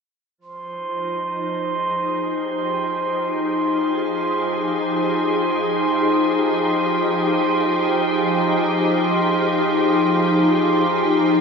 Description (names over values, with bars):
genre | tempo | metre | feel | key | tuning
ambient | free time | none | none | F minor | A4 = 440 Hz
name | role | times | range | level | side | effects
soft additive organ-like pad | sustained chords | 0.4-11.4 s | F3 to F5 | -19 LUFS | left 1 dB | ensemble chorus, built-in reverb
glass harmonica | texture | 0.4-11.4 s | C5 to C6 | -24 LUFS | right 2 dB | none
room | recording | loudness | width
wet huge ambient reverb, RT60 7.8 s | in a vast, echoing space | -17 LUFS | side -5 dB against mid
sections
0.4-11.4 A section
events
none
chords
0.4 Fm7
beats
free time